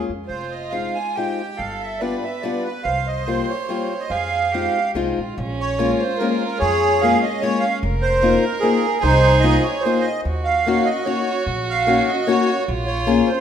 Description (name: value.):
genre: musette waltz.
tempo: 146 BPM.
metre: 3/4.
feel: swing 54% on 8ths.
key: F minor, Bb minor from 5.4 s.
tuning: A4 = 440 Hz.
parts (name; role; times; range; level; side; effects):
accordion; melody; 0.0-13.4 s; Eb4 to Ab5; -21 LUFS; right 2 dB; light tremolo tuning.
fingerpicked acoustic archtop guitar; accompaniment; 0.0-13.3 s; G3 to Ab4; -22 LUFS; left 5 dB; none.
upright bass; bass; 0.0-13.2 s; F1 to F2; -24 LUFS; equal; none.
rich violin; second line; 0.3-13.4 s; Db4 to C5; -27 LUFS; right 4 dB; none.
room: wet recital hall reverb, RT60 1.6 s.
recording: minimal, uncompressed stereo recording.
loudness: -17 LUFS.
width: side -8 dB against mid.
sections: 0.0-5.4 A section; 5.4-13.4 B section.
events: none.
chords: 0.3 Fm7; 1.6 G7; 2.9 C7sus4; 4.1 Fm7; 5.4 Bbm7; 7.8 F7sus4; 10.3 Ebm7; 12.7 Bbm7.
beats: | 0.30 0.74 1.17 | 1.59 2.02 2.44 | 2.86 3.28 3.70 | 4.12 4.54 4.96 | 5.38 5.79 6.21 | 6.62 7.02 7.42 | 7.82 8.23 8.63 | 9.03 9.43 9.84 | 10.25 10.66 11.07 | 11.47 11.87 12.27 | 12.67 13.07.